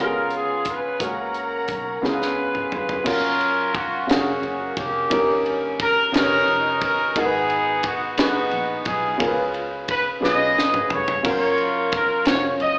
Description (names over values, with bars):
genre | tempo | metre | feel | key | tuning
slow gospel | 59 BPM (dotted quarters) | 6/8 | straight | F# major | A4 = 440 Hz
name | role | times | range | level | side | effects
warm horn section | melody | 0.0-12.8 s | A#3 to D#5 | -21 LUFS | equal | none
warm upright piano | accompaniment | 0.0-12.8 s | G2 to E#5 | -24 LUFS | equal | slapback echo
warm studio string section | sustained chords | 0.0-3.1 s | B3 to A#5 | -33 LUFS | equal | none
fingered electric bass | bass | 0.0-12.8 s | E#1 to C#2 | -39 LUFS | equal | none
tight funk drum kit | drums | 0.3-12.8 s | crash cymbal, hi-hat, kick drum, ride cymbal, snare drum, toms | -26 LUFS | equal | none
room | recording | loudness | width
light reverb, small room reverb | live gig heard through the venue's PA, club reverb, AM radio sound | -19 LUFS | side -28 dB against mid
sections
0.0-3.1 A section; 3.1-12.8 B section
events
drum fill 2.0-3.1, 10.2-11.2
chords
0.0 C#7; 1.0 F#/C#; 2.0 C#7; 3.1 F#maj7; 5.1 D#7/G; 7.2 G#m7; 9.2 C#7; 11.2 F#maj7